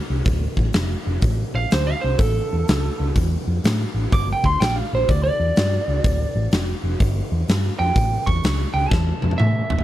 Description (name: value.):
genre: blues rock power trio and southern rock.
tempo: 125 BPM.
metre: 4/4.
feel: swing 65% on 8ths.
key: D minor.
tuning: A4 = 439 Hz.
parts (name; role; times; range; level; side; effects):
hollow-body short-scale picked electric bass; bass; 0.1-9.8 s; D1 to A2; -22 LUFS; equal; none.
huge arena drum kit; drums; 0.3-9.8 s; hi-hat, kick drum, snare drum, toms; -22 LUFS; equal; none.
lightly driven lead guitar; second line; 1.6-9.8 s; A4 to D6; -24 LUFS; right 2 dB; none.
room: little or no reverb.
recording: none.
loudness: -18 LUFS.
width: side -14 dB against mid.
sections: 0.0-9.8 A section.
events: lead electric guitar solo 0.0-9.8; drum fill 8.9-9.8.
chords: 0.0 Dm7; 2.2 A; 4.1 Gm; 6.0 Dm; 7.0 N.C.; 8.0 A.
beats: | 0.26 0.74 1.23 1.71 | 2.19 2.67 3.16 3.64 | 4.12 4.60 5.08 5.57 | 6.05 6.53 7.01 7.49 | 7.97 8.45 8.93 9.41.